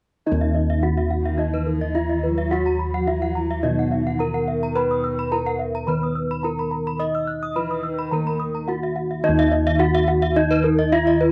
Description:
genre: Balinese gamelan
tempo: 107 BPM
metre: 4/4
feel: straight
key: Eb pelog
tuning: A4 = 443 Hz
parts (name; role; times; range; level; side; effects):
- gamelan-type bronze metallophone; melody; 0.3-11.3 s; Eb4 to Eb5; -27 LUFS; equal; none
- gamelan-type bronze metallophone; accompaniment; 0.3-11.3 s; Eb3 to Eb4; -32 LUFS; equal; none
- gamelan-type bronze metallophone; arpeggios; 0.3-11.3 s; Bb4-30c to Gb6-30c; -29 LUFS; equal; none
- gamelan-type bossed gongs; bass; 0.3-11.3 s; Eb2 to Eb5; -26 LUFS; equal; none
- gamelan-type bronze metallophone; arpeggios; 0.4-11.2 s; Cb5-20c to Fb6+20c; -31 LUFS; equal; none
- dark cello; second line; 1.2-8.7 s; Eb3 to Gb3-25c; -36 LUFS; equal; none
room: light reverb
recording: dry, close 1970s-style studio recording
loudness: -22 LUFS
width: mono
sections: 0.3-9.2 A section; 9.2-11.3 A section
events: none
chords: none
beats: | 0.27 0.83 1.39 1.95 | 2.51 3.07 3.63 4.19 | 4.75 5.32 5.88 6.44 | 7.00 7.56 8.12 8.68 | 9.24 9.80 10.36 10.92

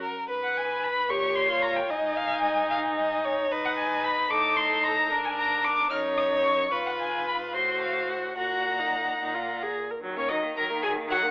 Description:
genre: quick classical-period movement for string quartet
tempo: 74 BPM (dotted quarters)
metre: 6/8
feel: straight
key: Eb minor from 3.5 s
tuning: A4 = 440 Hz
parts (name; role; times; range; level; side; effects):
- rich violin; melody; 0.0-11.3 s; Db5 to F6; -27 LUFS; left 1 dB; none
- rich violin; second line; 0.0-11.2 s; Db4 to Gb5; -29 LUFS; equal; none
- rich viola; accompaniment; 0.3-11.3 s; Gb3 to B4; -30 LUFS; equal; none
- clear cello; bass; 0.3-11.3 s; Gb2 to Eb3; -38 LUFS; right 1 dB; none
room: light reverb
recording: telephone sound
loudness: -24 LUFS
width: side -23 dB against mid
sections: 0.0-10.0 A section; 10.0-11.3 B section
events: none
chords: 0.3 G#m; 1.1 Gdim/Bb; 1.9 G#5; 4.3 Cm13/A; 5.1 Bb7/Ab; 5.9 Ebm/Gb; 6.7 Fdim/Ab; 7.5 Am6; 8.4 Ebm/Bb; 9.2 Bb5; 10.0 Ebm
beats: | 0.30 1.10 | 1.91 2.71 | 3.51 4.31 | 5.11 5.91 | 6.72 7.54 | 8.37 9.20 | 10.03 10.84

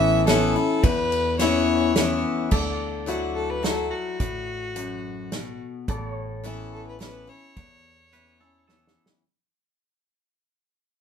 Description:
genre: honky-tonk and classic country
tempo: 107 BPM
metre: 3/4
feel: straight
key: D major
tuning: A4 = 437 Hz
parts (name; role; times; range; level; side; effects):
- clear fiddle; melody; 0.0-9.0 s; F#4 to E5; -26 LUFS; left 1 dB; none
- picked steel-string acoustic guitar; accompaniment; 0.0-9.2 s; E2 to F#4; -25 LUFS; left 4 dB; none
- pedal steel guitar; sustained chords; 0.0-9.2 s; A4 to D5; -37 LUFS; left 2 dB; none
- upright bass; bass; 0.0-9.0 s; A1 to E2; -32 LUFS; right 2 dB; none
- unplugged drum kit; drums; 0.3-9.2 s; crash cymbal, hi-hat, kick drum, ride cymbal, snare drum; -26 LUFS; right 1 dB; none
- twangy electric guitar; second line; 8.1-9.1 s; A4 to B4; -65 LUFS; right 6 dB; none
room: moderate studio reverb, RT60 0.7 s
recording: minimal, uncompressed stereo recording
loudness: -22 LUFS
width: side -7 dB against mid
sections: 0.0-2.5 A section; 2.5-9.2 B section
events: fade-out 2.5-9.2; drum fill 8.7-9.2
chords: 0.0 Aadd9; 2.5 Dadd9; 5.9 Aadd9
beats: 0.28 | 0.83 1.40 1.96 | 2.52 3.08 3.64 | 4.20 4.76 5.32 | 5.88 6.44 7.00 | 7.56 8.12 8.69

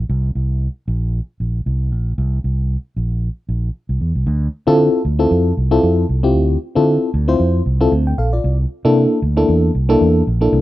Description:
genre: early-eighties boogie funk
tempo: 115 BPM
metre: 4/4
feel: swing 56% on 16ths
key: D minor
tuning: A4 = 439 Hz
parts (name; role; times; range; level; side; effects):
- fingered electric bass; bass; 0.0-10.6 s; Bb1 to D3; -16 LUFS; equal; none
- FM electric piano with auto-pan; accompaniment; 4.7-10.6 s; Bb3 to G5; -15 LUFS; left 1 dB; plate reverb
room: light reverb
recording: rough home demo mix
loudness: -14 LUFS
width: side -15 dB against mid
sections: 0.0-4.3 A section; 4.3-10.6 B section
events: none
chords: 0.1 C7(no3); 4.3 Dm9; 8.4 C13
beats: | 0.09 0.61 1.14 1.66 | 2.18 2.70 3.22 3.75 | 4.27 4.79 5.31 5.83 | 6.35 6.88 7.40 7.92 | 8.44 8.96 9.48 10.01 | 10.53

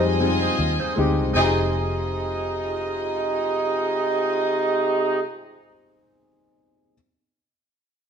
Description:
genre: lush 1970s-style soul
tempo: 78 BPM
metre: 4/4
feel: swing 58% on 16ths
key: F minor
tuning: A4 = 440 Hz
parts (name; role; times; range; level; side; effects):
- warm studio string section; second line; 0.0-5.2 s; F4 to Ab5; -28 LUFS; left 1 dB; none
- warm baby grand piano; accompaniment; 0.0-6.9 s; G3 to Ab4; -26 LUFS; left 2 dB; none
- semi-hollow electric guitar; riff; 0.0-5.7 s; Eb4 to C5; -31 LUFS; right 2 dB; wah, spring reverb
- vintage muted fingered electric bass; bass; 0.0-5.6 s; F1 to F2; -26 LUFS; left 1 dB; none
- dark horn section; stabs; 1.4-5.2 s; C3 to Eb4; -23 LUFS; right 2 dB; none
room: wet stone room reverb, RT60 1.2 s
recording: band playing live in one room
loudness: -20 LUFS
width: side -7 dB against mid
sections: 0.0-1.4 A section; 1.4-4.4 B section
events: band accent 0.0-1.4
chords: 0.0 Fm7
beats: 0.58 | 1.35 2.12 2.89 3.66

